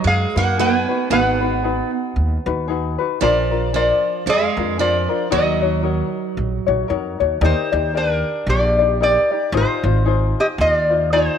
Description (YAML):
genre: Hawaiian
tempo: 114 BPM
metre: 4/4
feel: swing 58% on 8ths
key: Eb minor, Eb major from 7.4 s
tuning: A4 = 445 Hz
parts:
  - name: lap resonator guitar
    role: melody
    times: 0.0-11.4 s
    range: D4 to G#5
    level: -19 LUFS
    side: equal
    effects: none
  - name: picked steel-string acoustic guitar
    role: second line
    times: 0.0-6.9 s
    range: F3 to B3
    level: -23 LUFS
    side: right 12 dB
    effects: none
  - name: tenor ukulele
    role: accompaniment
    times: 0.0-11.4 s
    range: D4 to D5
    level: -22 LUFS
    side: left 11 dB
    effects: none
  - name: upright bass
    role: bass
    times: 0.0-11.3 s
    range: Ab1 to F#2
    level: -21 LUFS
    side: right 1 dB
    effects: none
room: light reverb, small room ambience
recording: 1960s-style stereo with parts hard left and right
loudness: -16 LUFS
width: side -8 dB against mid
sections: 0.0-7.4 A section; 7.4-11.4 B section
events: none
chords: 0.0 B6; 1.1 Abm7; 3.2 Bb7; 5.3 Ebm7; 7.4 Ebmaj7; 9.5 Ab6